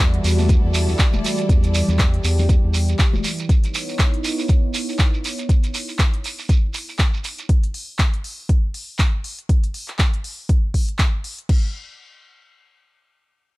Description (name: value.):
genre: deep house.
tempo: 120 BPM.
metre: 4/4.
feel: swing 57% on 16ths.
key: unclear.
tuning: A4 = 440 Hz.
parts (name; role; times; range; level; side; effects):
warm analog pad; sustained chords; 0.0-7.5 s; E3 to D5; -26 LUFS; right 1 dB; chorus, sidechain pumping.
round analog bass; bass; 0.0-3.2 s; E1 to E2; -19 LUFS; equal; sidechain pumping.
clear studio string section; texture; 0.0-3.5 s; E4 to D5; -35 LUFS; left 3 dB; sidechain pumping.
deep house drum kit; drums; 0.1-11.6 s; crash cymbal, handclaps, hi-hat; -27 LUFS; equal; small room ambience.
shekere; percussion; 0.2-7.5 s; none; -28 LUFS; right 4 dB; none.
congas; percussion; 0.4-3.2 s; none; -29 LUFS; left 4 dB; sidechain pumping on perc.
electronic kick drum; drums; 0.5-11.6 s; none; -17 LUFS; equal; small room ambience.
room: little or no reverb.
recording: dry, gritty hardware recording.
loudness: -17 LUFS.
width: side -20 dB against mid.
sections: 0.0-11.5 A section; 11.5-13.6 B section.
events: fade-out on string section 0.0-3.5; filter sweep on analog synth pad 0.0-7.5.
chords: 0.0 Em9; 3.5 C#m9; 7.5 N.C..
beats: 0.49 0.99 | 1.49 1.99 2.49 2.99 | 3.49 3.99 4.49 4.99 | 5.49 5.99 6.49 6.99 | 7.49 7.99 8.49 8.99 | 9.49 9.99 10.49 10.99 | 11.49.